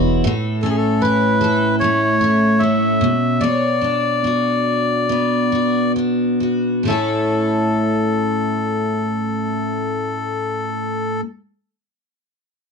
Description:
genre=acoustic pop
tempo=65-77 BPM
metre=4/4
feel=straight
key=A major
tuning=A4 = 438 Hz
part: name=picked steel-string acoustic guitar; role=accompaniment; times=0.0-11.3 s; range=E2 to C#5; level=-18 LUFS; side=equal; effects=double-tracked left and right
part: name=flamenco guitar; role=arpeggios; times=0.0-0.8 s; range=F#3 to G#4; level=-29 LUFS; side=right 4 dB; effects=none
part: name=melodica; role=melody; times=0.6-11.2 s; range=G#4 to E5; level=-20 LUFS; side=left 3 dB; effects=none
room=light reverb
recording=dry, close 1970s-style studio recording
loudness=-16 LUFS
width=side -5 dB against mid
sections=0.2-6.9 A section; 6.9-10.6 B section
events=slowing down 0.2-6.9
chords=0.2 A; 3.0 Bmadd9; 6.9 A

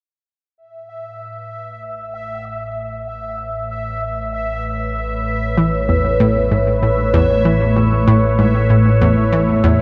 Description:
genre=ambient, sequencer-driven space music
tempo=96 BPM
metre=4/4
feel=straight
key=A major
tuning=A4 = 440 Hz
part: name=phased analog pad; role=sustained chords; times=2.5-9.8 s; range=A2 to C#5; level=-20 LUFS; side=equal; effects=phaser, chorus
part: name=round analog bass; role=bass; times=0.6-9.8 s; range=A1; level=-29 LUFS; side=equal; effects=none
part: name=bubbling stepped-filter texture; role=texture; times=0.6-9.8 s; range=E5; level=-29 LUFS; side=equal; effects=chorus, built-in reverb
part: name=analog pluck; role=riff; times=5.6-9.8 s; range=E2 to E3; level=-19 LUFS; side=equal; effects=chorus, cassette tape, analog delay
room=wet cathedral reverb, RT60 5.2 s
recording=in a vast, echoing space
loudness=-16 LUFS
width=mono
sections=0.6-9.8 A section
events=fade-in on analog synth bass 0.6-9.8; filter sweep on analog synth pad 0.6-9.8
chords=0.6 Aadd9

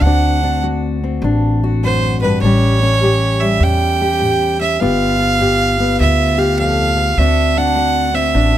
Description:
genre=acoustic country blues, solo or duo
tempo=101 BPM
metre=4/4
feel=swing 64% on 8ths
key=D mixolydian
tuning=A4 = 440 Hz
part: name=clear fiddle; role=melody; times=0.0-8.6 s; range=B4 to G5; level=-16 LUFS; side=right 4 dB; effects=none
part: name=fingerpicked steel-string acoustic guitar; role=accompaniment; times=0.0-8.6 s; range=D2 to G4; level=-18 LUFS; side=left 3 dB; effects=none
part: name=upright bass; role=bass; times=0.0-8.6 s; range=G1 to E2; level=-17 LUFS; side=equal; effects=none
room=little or no reverb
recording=close, detailed microphones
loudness=-12 LUFS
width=side -12 dB against mid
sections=0.0-8.6 A section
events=none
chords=0.0 D7; 2.4 A7; 4.8 G7; 7.2 D7

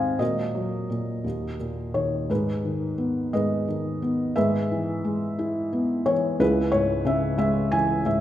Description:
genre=classical, lyrical solo piano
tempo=59 BPM (dotted quarters)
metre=6/8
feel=rubato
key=G# minor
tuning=A4 = 439 Hz
part: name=felt-muted upright piano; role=solo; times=0.0-8.2 s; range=C#2 to Ab5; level=-22 LUFS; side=equal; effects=none
room=wet recital hall reverb, RT60 1.7 s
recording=recorded in a church or concert hall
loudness=-22 LUFS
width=side -12 dB against mid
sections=0.0-2.3 A section; 2.3-8.2 B section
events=none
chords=0.2 Ebm/Bb; 1.2 Eb5; 2.3 G#m; 4.4 E/G#; 6.4 C#m

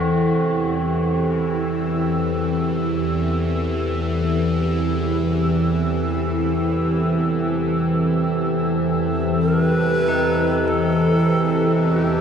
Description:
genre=dark ambient drone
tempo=free time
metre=none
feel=none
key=unclear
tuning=A4 = 440 Hz
part: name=dark analog pad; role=sustained chords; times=0.0-12.2 s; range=E3 to E6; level=-21 LUFS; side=equal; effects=chorus
part: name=tubular bells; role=arpeggios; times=0.0-12.2 s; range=C4 to D#4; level=-32 LUFS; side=left 1 dB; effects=ping-pong delay
part: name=bowed-like drone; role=drone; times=0.0-12.2 s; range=E2 to E3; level=-22 LUFS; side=right 1 dB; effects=built-in reverb, phaser
part: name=bronze singing bowl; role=texture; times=0.0-12.2 s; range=A4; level=-29 LUFS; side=right 3 dB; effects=none
part: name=bright reedy long shakuhachi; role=melody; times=9.4-12.2 s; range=G4 to B4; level=-22 LUFS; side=equal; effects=ping-pong delay
room=wet cathedral reverb, RT60 5.3 s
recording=in a vast, echoing space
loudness=-18 LUFS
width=side -7 dB against mid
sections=0.0-12.2 A section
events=none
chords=0.0 C6/E

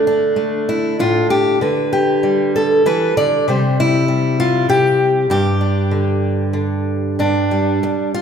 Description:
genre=folk, solo fingerstyle acoustic guitar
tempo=96 BPM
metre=3/4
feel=rubato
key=G mixolydian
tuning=A4 = 440 Hz
part: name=fingerpicked steel-string acoustic guitar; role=solo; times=0.0-8.2 s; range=G2 to D5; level=-14 LUFS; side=equal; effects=none
room=wet recital hall reverb, RT60 1.4 s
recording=recorded in a church or concert hall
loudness=-14 LUFS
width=side -7 dB against mid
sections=0.0-7.2 A section; 7.2-8.2 B section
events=none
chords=0.0 D5; 1.6 G/D; 3.5 C; 5.3 G5

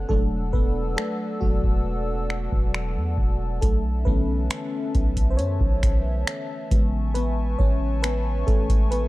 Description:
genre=contemporary R&B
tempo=68 BPM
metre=4/4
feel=straight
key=B dorian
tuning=A4 = 438 Hz
part: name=FM electric piano with soft pad layer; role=accompaniment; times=0.0-9.1 s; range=C#3 to C#5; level=-28 LUFS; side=equal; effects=chorus
part: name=hollow soft pad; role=sustained chords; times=0.0-9.1 s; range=C#4 to E6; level=-34 LUFS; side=left 4 dB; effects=chorus
part: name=long sustained 808-style bass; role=bass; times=0.0-9.1 s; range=E1 to F#2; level=-25 LUFS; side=equal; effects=none
part: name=booming analog drum machine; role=drums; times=0.1-9.1 s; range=finger snaps, hi-hat, kick drum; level=-22 LUFS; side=equal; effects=none
room=digital ambience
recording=dark, warm production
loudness=-21 LUFS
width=side -18 dB against mid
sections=0.0-9.1 A section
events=FM electric piano solo 0.0-9.1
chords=0.1 E9sus4; 3.6 Bm11; 6.7 Amaj7

